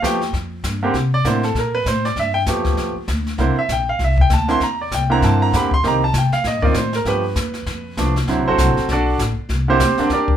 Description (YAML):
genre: jazz piano trio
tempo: 197 BPM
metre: 4/4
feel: swing 60% on 8ths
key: unclear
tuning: A4 = 441 Hz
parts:
  - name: clear concert grand piano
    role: melody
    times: 0.0-10.4 s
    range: D3 to C6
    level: -18 LUFS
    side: right 2 dB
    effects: none
  - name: upright bass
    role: bass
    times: 0.0-10.4 s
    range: F#1 to C3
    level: -20 LUFS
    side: left 1 dB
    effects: none
  - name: jazz brush drum kit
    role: drums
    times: 0.0-10.4 s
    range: brushed snare drum, hi-hat, kick drum, snare drum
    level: -24 LUFS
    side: left 2 dB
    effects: none
room: moderate studio ambience, RT60 0.5 s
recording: band playing live in one room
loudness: -16 LUFS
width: side -10 dB against mid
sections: 0.0-10.4 A section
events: grand piano solo 0.0-10.4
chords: 0.0 G7(no3); 0.9 C7sus2; 2.2 G9; 3.4 C9; 5.8 Cm7; 7.1 G9; 8.3 D9; 9.5 C9